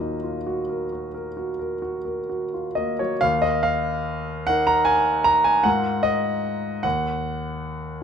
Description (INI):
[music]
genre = classical, impressionist solo piano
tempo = 42-52 BPM (dotted quarters)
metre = 9/8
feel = rubato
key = Eb minor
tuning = A4 = 441 Hz
[part]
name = clear concert grand piano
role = solo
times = 0.0-8.0 s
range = Eb2 to Bb5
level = -21 LUFS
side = equal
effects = none
[sound]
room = light reverb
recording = minimal, uncompressed stereo recording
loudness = -21 LUFS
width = side -7 dB against mid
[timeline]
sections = 0.0-3.2 A section; 3.2-8.0 A section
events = none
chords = 0.0 Ebmadd9; 3.2 Eb5; 5.7 Absus2; 6.8 Ebm